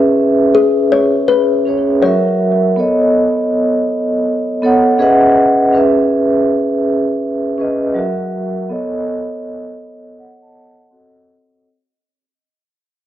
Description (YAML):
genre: hip hop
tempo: 81 BPM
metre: 4/4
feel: swing 65% on 16ths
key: C# minor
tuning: A4 = 440 Hz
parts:
  - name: vibraphone with soft mallets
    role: accompaniment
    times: 0.0-11.7 s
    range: F#3 to A5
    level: -12 LUFS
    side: right 1 dB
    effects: cassette tape, low-pass filter, plate reverb
  - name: kalimba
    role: melody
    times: 0.5-4.9 s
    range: G#4 to C#5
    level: -15 LUFS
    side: left 7 dB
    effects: low-pass filter
room: moderate studio reverb, RT60 0.6 s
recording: home recording on cassette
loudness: -12 LUFS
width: side -12 dB against mid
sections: 0.0-5.7 A section; 5.7-11.7 B section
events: fade-out 5.7-11.7; filter sweep on vibraphone 5.7-11.7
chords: 0.0 C#m7; 2.0 F#7; 2.8 B9; 5.0 C#m11; 5.7 C#m7; 8.0 F#7; 8.7 B9; 10.9 Cdim7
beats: 0.54 1.28 2.03 | 2.77 3.51 4.25 4.99 | 5.73 6.47 7.21 7.95 | 8.69 9.43 10.17 10.91